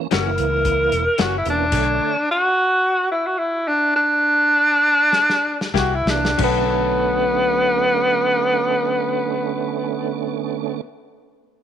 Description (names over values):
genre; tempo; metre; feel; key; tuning
straight-eighth soul blues; 90-112 BPM; 4/4; swing 54% on 16ths; B minor; A4 = 442 Hz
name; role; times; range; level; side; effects
tonewheel organ; accompaniment; 0.0-2.2, 6.1-10.8 s; D3 to C#5; -25 LUFS; right 16 dB; slow rotary speaker, overdrive, chorus vibrato
breathy tenor saxophone; melody; 0.1-10.8 s; B3 to A#4; -18 LUFS; equal; none
direct-recorded clean electric guitar; stabs; 0.1-1.4, 5.7-10.9 s; E3 to A4; -27 LUFS; left 15 dB; wide subtle chorus
vintage muted fingered electric bass; bass; 0.1-2.0, 5.7-10.8 s; E1 to C#2; -26 LUFS; left 1 dB; none
warm soul drum kit; drums; 0.1-1.9, 5.1-6.6 s; crash cymbal, hi-hat, kick drum, snare drum; -24 LUFS; left 2 dB; none
room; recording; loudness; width
moderate plate reverb, RT60 2.1 s; 1960s-style stereo with parts hard left and right; -16 LUFS; side -9 dB against mid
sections
0.0-6.4 A section; 6.4-11.6 B section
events
slowing down 1.7-6.4; drum fill 5.1-6.4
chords
0.0 F#7; 1.7 Bm9 (rootless); 5.7 C7; 6.4 Bm9